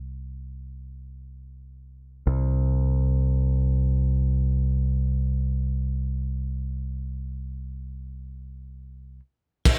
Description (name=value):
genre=breakbeat, breaks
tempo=free time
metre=none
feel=none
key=unclear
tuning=A4 = 441 Hz
part: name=modern bright fingered electric bass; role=bass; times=0.0-9.2 s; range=C2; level=-27 LUFS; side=equal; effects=low-pass filter
part: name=crunchy breakbeat drum kit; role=drums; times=9.7-9.8 s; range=crash cymbal, kick drum, ride cymbal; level=-19 LUFS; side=equal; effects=none
room=little or no reverb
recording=low-pass filter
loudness=-26 LUFS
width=mono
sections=0.0-9.7 A section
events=filter sweep 0.0-9.7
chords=none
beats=free time